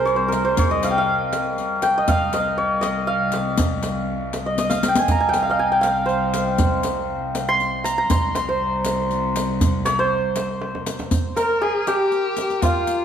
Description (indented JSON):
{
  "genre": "Persian modal ensemble",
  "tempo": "80 BPM (dotted quarters)",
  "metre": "6/8",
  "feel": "straight",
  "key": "C dastgah shur",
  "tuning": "A4 = 437 Hz",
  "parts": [
    { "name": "santur", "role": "melody", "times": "0.0-13.0 s", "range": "F4 to C6", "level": "-20 LUFS", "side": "right 1 dB", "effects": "none" },
    { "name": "clear studio cello section", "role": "drone", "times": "0.0-11.2 s", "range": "C2", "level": "-28 LUFS", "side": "left 2 dB", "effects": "none" },
    { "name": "riq", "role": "percussion", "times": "0.1-13.0 s", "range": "none", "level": "-28 LUFS", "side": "left 5 dB", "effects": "none" },
    { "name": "tombak", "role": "percussion", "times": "0.1-12.7 s", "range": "none", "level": "-25 LUFS", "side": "right 2 dB", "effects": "none" },
    { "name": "clear kamancheh", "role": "second line", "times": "11.4-13.0 s", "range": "F4 to Bb4", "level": "-24 LUFS", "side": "left 4 dB", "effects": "none" }
  ],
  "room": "moderate recital hall reverb, RT60 1.4 s",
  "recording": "none",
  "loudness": "-18 LUFS",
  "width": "side -8 dB against mid",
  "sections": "0.0-11.1 A section; 11.1-13.0 B section",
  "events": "drum fill 4.6-5.1, 10.6-11.1",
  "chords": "none",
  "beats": "| 0.57 1.32 | 2.08 2.83 | 3.58 4.33 | 5.09 5.84 | 6.59 7.34 | 8.10 8.85 | 9.61 10.36 | 11.12 11.87 | 12.63"
}